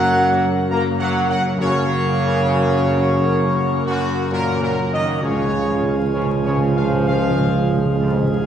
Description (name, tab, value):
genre	classical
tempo	66 BPM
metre	4/4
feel	straight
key	F# major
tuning	A4 = 440 Hz
part	mellow trumpet section	melody	0.0-8.5 s	E#4 to A#5	-23 LUFS	equal	none
part	bright trombone section	sustained chords	0.0-8.5 s	E#2 to A#3	-23 LUFS	right 1 dB	none
part	mellow French horn section	sustained chords	0.0-8.5 s	E#3 to C#4	-26 LUFS	left 1 dB	none
part	pipe organ, principal chorus	sustained chords	0.0-8.5 s	C#3 to A#4	-23 LUFS	equal	none
part	dark tuba	bass	0.0-8.5 s	C#2 to F#2	-21 LUFS	right 1 dB	none
part	timpani	percussion	5.2-8.4 s	C#3	-27 LUFS	right 1 dB	none
room	wet scoring stage reverb, RT60 2.0 s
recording	heard from further back in the room, vinyl crackle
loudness	-16 LUFS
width	side -9 dB against mid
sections	0.0-8.5 A section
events	timpani fill 5.2-8.5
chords	0.0 F#; 5.2 C#